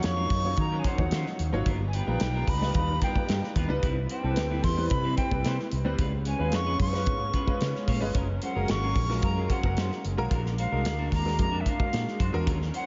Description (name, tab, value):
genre	polished 1980s jazz-funk pop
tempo	111 BPM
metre	4/4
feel	straight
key	unclear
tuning	A4 = 440 Hz
part	breathy silver concert flute	melody	0.0-12.9 s	Fb5 to Db6	-36 LUFS	equal	none
part	warm grand piano	accompaniment	0.0-12.5 s	F3 to Db5	-35 LUFS	equal	analog chorus, slapback echo
part	warm studio string section	sustained chords	0.0-12.9 s	C3 to A#5	-42 LUFS	equal	none
part	clean electric guitar	riff	0.0-12.9 s	Gb3 to Db5	-40 LUFS	equal	lush chorus, slapback echo
part	mellow fretless electric bass	bass	0.0-12.7 s	Gb1 to Eb3	-32 LUFS	equal	none
part	modern studio drum kit	drums	0.0-12.9 s	hi-hat, kick drum, snare drum	-32 LUFS	equal	none
room	moderate lush hall reverb, RT60 2.6 s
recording	big arena sound, nothing above 7.5 kHz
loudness	-27 LUFS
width	mono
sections	0.0-12.9 A section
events	none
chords	0.0 Ebm9; 1.7 G7alt; 3.8 Cmaj7; 6.0 Db7; 8.1 Gbmaj9; 10.3 Bb7b13